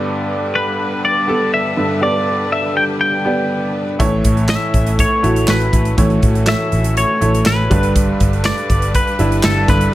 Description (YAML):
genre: piano-driven pop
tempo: 121 BPM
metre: 4/4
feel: straight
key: unclear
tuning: A4 = 440 Hz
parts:
  - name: bright upright piano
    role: accompaniment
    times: 0.0-9.9 s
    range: G2 to D5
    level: -18 LUFS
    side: right 1 dB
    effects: none
  - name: bright studio string section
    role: sustained chords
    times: 0.0-9.9 s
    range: G3 to B4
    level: -26 LUFS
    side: left 1 dB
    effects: none
  - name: twelve-string electric guitar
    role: melody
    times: 0.6-9.9 s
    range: A4 to G5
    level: -18 LUFS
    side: left 1 dB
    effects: none
  - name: vintage muted picked electric bass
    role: bass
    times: 4.0-9.9 s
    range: G1 to A1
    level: -17 LUFS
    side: equal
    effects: none
  - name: natural country drum kit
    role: drums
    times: 4.0-9.9 s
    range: handclaps, hi-hat, kick drum, snare drum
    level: -17 LUFS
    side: equal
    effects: none
room: light reverb, studio reverb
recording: none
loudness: -13 LUFS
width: side -15 dB against mid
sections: 0.0-9.9 A section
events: none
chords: 0.0 G; 4.0 A; 7.7 G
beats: | 0.04 0.54 1.03 1.53 | 2.02 2.52 3.01 3.50 | 4.00 4.49 4.99 5.48 | 5.98 6.47 6.97 7.46 | 7.96 8.45 8.95 9.44 | 9.93